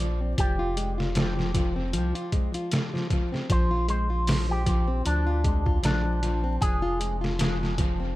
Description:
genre	trip hop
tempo	77 BPM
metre	4/4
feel	swing 56% on 16ths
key	F dorian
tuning	A4 = 440 Hz
part	electric guitar with an envelope filter	melody	0.0-7.2 s	D4 to D5	-32 LUFS	equal	dub echo
part	nylon-string guitar	arpeggios	0.0-8.2 s	F3 to F4	-30 LUFS	left 1 dB	low-pass filter, analog delay
part	round analog bass	bass	0.0-8.2 s	F1 to D2	-28 LUFS	equal	none
part	trip hop sampler-style drum kit	drums	0.4-8.0 s	hi-hat, kick drum, snare drum	-26 LUFS	equal	tape echo
room	little or no reverb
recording	echo-heavy mix, vinyl crackle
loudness	-23 LUFS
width	side -17 dB against mid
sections	0.0-8.2 A section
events	none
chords	0.4 Fm; 3.5 Bb9; 6.6 Fm

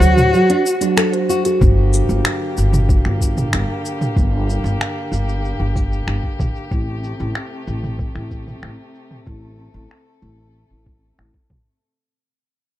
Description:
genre	folktronica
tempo	94 BPM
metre	4/4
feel	straight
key	G minor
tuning	A4 = 440 Hz
part	rich cello	melody	0.0-1.3 s	F#4	-20 LUFS	left 1 dB	tape echo
part	kalimba	second line	0.0-1.6 s	F#3 to C5	-20 LUFS	right 1 dB	tape echo
part	nylon-string guitar	arpeggios	0.0-1.6 s	F#3 to A4	-21 LUFS	left 1 dB	tape echo
part	upright bass	bass	0.0-11.3 s	G1 to D2	-19 LUFS	equal	none
part	organic electronic drum kit	drums	0.0-11.8 s	finger snaps, hi-hat, shaker, toms	-23 LUFS	equal	overdrive, low-pass filter on hats, low-pass filter on toms, low-pass filter on perc, low-pass filter on snare
part	dark string quartet	sustained chords	1.6-11.8 s	C3 to A4	-28 LUFS	left 1 dB	vintage 12-bit sampler grit
part	electronic kick drum	drums	1.6-11.6 s	none	-18 LUFS	equal	overdrive
room	small room ambience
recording	dry, close 1970s-style studio recording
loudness	-16 LUFS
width	side -13 dB against mid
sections	0.0-1.6 A section; 1.6-11.8 B section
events	break 0.3-1.6; fade-out 1.6-11.8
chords	0.0 D; 1.6 Gm; 6.7 Am7

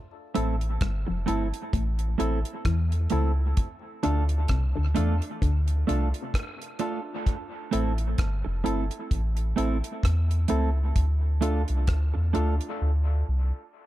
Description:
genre	dub reggae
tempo	65 BPM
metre	4/4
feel	swing 57% on 16ths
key	A minor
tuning	A4 = 440 Hz
part	mellow electric guitar	accompaniment	0.3-12.5 s	A3 to A4	-32 LUFS	right 7 dB	high-pass filter, dub echo
part	percussive organ stab	stabs	0.3-12.6 s	A3 to A4	-36 LUFS	left 6 dB	chorus, high-pass filter, dub echo
part	electric guitar with an envelope filter	riff	0.4-8.0 s	F2 to E3	-35 LUFS	left 6 dB	dub echo
part	soft dub sub bass	bass	0.4-13.5 s	F1 to E2	-24 LUFS	equal	none
part	deep reggae drum kit	drums	0.4-12.8 s	hi-hat, kick drum, rim click	-28 LUFS	equal	none
room	small room ambience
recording	echo-heavy mix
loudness	-24 LUFS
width	side -15 dB against mid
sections	0.0-13.9 A section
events	drums muted 12.8-13.9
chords	0.0 Am; 3.6 Dm; 7.3 Am; 11.0 Dm

